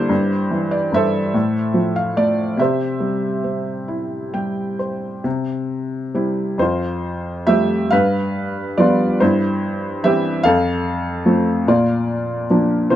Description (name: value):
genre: classical, lyrical solo piano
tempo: 44-50 BPM (dotted quarters)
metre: 6/8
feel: rubato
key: unclear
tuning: A4 = 442 Hz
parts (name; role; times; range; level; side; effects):
- felt-muted upright piano; solo; 0.0-13.0 s; F2 to G5; -17 LUFS; equal; none
room: light reverb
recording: none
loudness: -17 LUFS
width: side -12 dB against mid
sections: 0.0-5.3 A section; 5.3-13.0 B section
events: felt piano fill 3.9-5.3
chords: 0.1 C/G; 1.4 F/A; 2.6 C; 6.6 Fadd9; 7.9 G7; 9.2 C/G; 10.4 F; 11.7 Bb